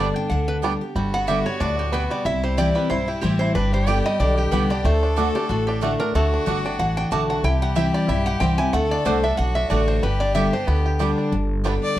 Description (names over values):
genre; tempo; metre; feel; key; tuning
bluegrass; 185 BPM; 4/4; swing 55% on 8ths; G major; A4 = 440 Hz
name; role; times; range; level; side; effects
lap resonator guitar; melody; 0.0-10.8 s; E4 to A5; -26 LUFS; equal; none
clear fiddle; second line; 0.0-12.0 s; D4 to D5; -30 LUFS; left 4 dB; none
picked steel-string acoustic guitar; accompaniment; 0.0-12.0 s; G2 to G4; -24 LUFS; left 1 dB; none
bluegrass banjo; arpeggios; 0.0-11.7 s; G3 to G4; -29 LUFS; right 1 dB; none
mandolin; stabs; 0.0-11.7 s; A3 to G5; -28 LUFS; right 8 dB; none
upright bass; bass; 0.0-12.0 s; G1 to D2; -24 LUFS; equal; none
room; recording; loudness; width
moderate studio reverb, RT60 0.6 s; dark, warm production; -19 LUFS; side -13 dB against mid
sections
1.0-11.3 A section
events
none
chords
0.0 G; 2.3 C; 3.6 G; 4.8 D; 7.4 C; 8.7 D; 10.0 G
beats
0.31 0.63 | 0.96 1.28 1.61 1.93 | 2.25 2.58 2.90 3.23 | 3.55 3.88 4.20 4.53 | 4.85 5.17 5.50 5.82 | 6.15 6.47 6.79 7.12 | 7.44 7.76 8.09 8.41 | 8.74 9.06 9.38 9.71 | 10.03 10.36 10.68 11.00 | 11.33 11.65 11.97